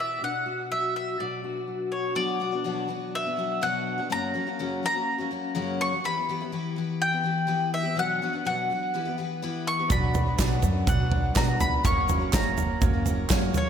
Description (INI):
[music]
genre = indie folk with a building arrangement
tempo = 124 BPM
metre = 4/4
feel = straight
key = B harmonic minor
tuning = A4 = 440 Hz
[part]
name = bowl-back mandolin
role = melody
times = 0.0-13.7 s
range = C#5 to C#6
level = -28 LUFS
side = left 1 dB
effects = tape echo
[part]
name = fingerpicked steel-string acoustic guitar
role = accompaniment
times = 0.0-4.1 s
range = B2 to G4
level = -33 LUFS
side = left 2 dB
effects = ensemble chorus
[part]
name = picked twelve-string acoustic guitar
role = accompaniment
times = 2.2-13.7 s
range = F#2 to G4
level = -30 LUFS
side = left 4 dB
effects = none
[part]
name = bright concert grand piano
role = accompaniment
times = 9.9-13.7 s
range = F#1 to D5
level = -34 LUFS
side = right 8 dB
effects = none
[part]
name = upright bass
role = bass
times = 9.9-13.5 s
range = F#1 to F#2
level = -28 LUFS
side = equal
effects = none
[part]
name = natural country drum kit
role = drums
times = 9.9-13.7 s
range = kick drum, snare drum, toms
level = -24 LUFS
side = right 1 dB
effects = none
[part]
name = egg shaker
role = percussion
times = 9.9-13.7 s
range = none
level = -40 LUFS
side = right 17 dB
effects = none
[part]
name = group handclap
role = percussion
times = 10.4-13.4 s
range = none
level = -37 LUFS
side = right 13 dB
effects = none
[sound]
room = moderate plate reverb, RT60 2.4 s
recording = dreamy mix soaked in reverb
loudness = -24 LUFS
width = side -8 dB against mid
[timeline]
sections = 0.0-2.2 A section; 2.2-13.7 B section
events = none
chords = 0.2 Bm; 4.1 F#; 6.0 Em; 8.0 Bm; 8.9 Em; 9.9 Bm; 11.8 F#